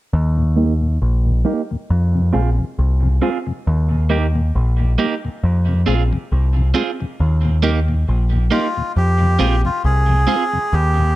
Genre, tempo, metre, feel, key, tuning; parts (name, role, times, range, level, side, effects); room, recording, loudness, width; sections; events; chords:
reggae; 68 BPM; 4/4; swing 57% on 16ths; A4 = 441 Hz
deep dub picked electric bass; bass; 0.1-11.2 s; Bb1 to F2; -15 LUFS; equal
mellow tonewheel organ; accompaniment; 0.4-11.0 s; Eb2 to F4; -25 LUFS; left 3 dB; slow rotary speaker, low-pass filter
electric guitar at the edge of break-up; accompaniment; 0.6-10.4 s; Bb3 to Ab4; -24 LUFS; right 6 dB; low-pass filter, dub echo
melodica; melody; 8.5-11.2 s; F4 to Ab4; -20 LUFS; equal; dub echo
light reverb; -15 LUFS; side -16 dB against mid
0.1-7.2 A section; 7.2-11.2 B section
filter sweep 0.1-7.2
0.1 Eb; 1.9 Fm; 3.7 Eb; 5.4 Fm; 7.2 Eb; 8.9 Fm